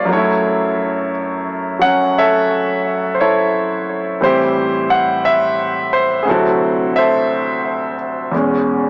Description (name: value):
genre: solo jazz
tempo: 58 BPM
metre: 4/4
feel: swing 66% on 8ths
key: unclear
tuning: A4 = 440 Hz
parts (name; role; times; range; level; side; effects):
- clear baby grand piano; solo; 0.0-8.9 s; D2 to F#5; -16 LUFS; equal; analog delay
room: light reverb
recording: dry, gritty hardware recording, transformer saturation, cassette tape, small speaker sound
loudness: -16 LUFS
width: mono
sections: 0.0-8.9 A section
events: none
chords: 0.1 F#m7; 4.2 Am7; 6.3 D9; 8.3 E6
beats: | 0.09 1.12 2.15 3.18 | 4.21 5.24 6.27 7.29 | 8.32